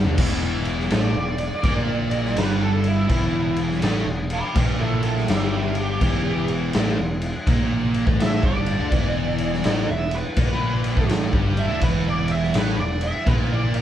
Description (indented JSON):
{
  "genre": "stoner and doom metal",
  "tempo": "82 BPM",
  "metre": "4/4",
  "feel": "swing 65% on 8ths",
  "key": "unclear",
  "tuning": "A4 = 440 Hz",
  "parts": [
    { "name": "phased string machine", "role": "sustained chords", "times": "0.0-13.8 s", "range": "E3 to F#5", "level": "-38 LUFS", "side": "left 1 dB", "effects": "none" },
    { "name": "overdriven electric guitar", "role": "riff", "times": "0.0-13.8 s", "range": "E2 to D4", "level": "-31 LUFS", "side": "equal", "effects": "none" },
    { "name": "thick fuzz guitar", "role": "riff", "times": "0.0-13.8 s", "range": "E2 to D4", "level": "-28 LUFS", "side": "left 4 dB", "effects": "distortion" },
    { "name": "thick fuzz guitar", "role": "riff", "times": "0.0-13.8 s", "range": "E2 to D4", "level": "-29 LUFS", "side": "right 6 dB", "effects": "distortion" },
    { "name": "picked electric bass", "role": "bass", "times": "0.0-13.8 s", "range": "E1 to D2", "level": "-26 LUFS", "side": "left 1 dB", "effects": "overdrive" },
    { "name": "raw garage drum kit", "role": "drums", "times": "0.0-13.8 s", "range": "crash cymbal, kick drum, snare drum, toms", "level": "-23 LUFS", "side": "equal", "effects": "none" },
    { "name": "fuzz lead guitar", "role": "melody", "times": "0.9-13.8 s", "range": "E4 to E5", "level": "-27 LUFS", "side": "right 2 dB", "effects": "wah, distortion" }
  ],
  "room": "moderate studio reverb, RT60 0.8 s",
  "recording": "band playing live in one room",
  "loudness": "-19 LUFS",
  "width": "side -11 dB against mid",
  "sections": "0.2-13.8 A section",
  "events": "drum fill 0.0; lead electric guitar solo 0.2-13.8",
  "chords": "0.2 Em"
}